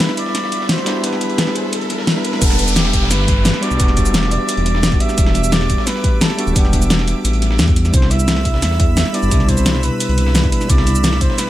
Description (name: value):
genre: liquid drum and bass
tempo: 174 BPM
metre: 4/4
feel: straight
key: E minor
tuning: A4 = 443 Hz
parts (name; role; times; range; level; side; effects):
- mellow flugelhorn; melody; 0.0-11.5 s; G4 to E5; -24 LUFS; equal; tape echo
- bell-like tine electric piano; accompaniment; 0.0-11.5 s; B2 to F#5; -21 LUFS; equal; analog delay
- lush unison pad; sustained chords; 0.0-11.5 s; G3 to E6; -29 LUFS; equal; chorus, sidechain pumping
- dusty soul sampler-style drum kit; drums; 0.0-11.5 s; hi-hat, snare drum; -26 LUFS; left 1 dB; overdrive, high-pass filter on snare, high-pass filter on hats, high-pass filter on room
- pop drum kit; drums; 0.0-11.5 s; hi-hat, shaker, snare drum; -20 LUFS; equal; dub echo
- riser and downlifter; sound effects; 0.0-5.2 s; none; -24 LUFS; right 1 dB; none
- dark detuned saw bass; bass; 2.4-11.3 s; D1 to E2; -17 LUFS; equal; tube saturation
- electronic kick drum; drums; 2.4-11.3 s; none; -16 LUFS; equal; none
room: light reverb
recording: echo-heavy mix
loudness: -13 LUFS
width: side -14 dB against mid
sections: 0.0-2.4 A section; 2.4-11.5 B section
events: build-up 0.0-2.4; riser 0.0-2.4; drop 2.4-11.5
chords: 0.0 Cmaj7; 2.4 Em7; 7.9 Cmaj7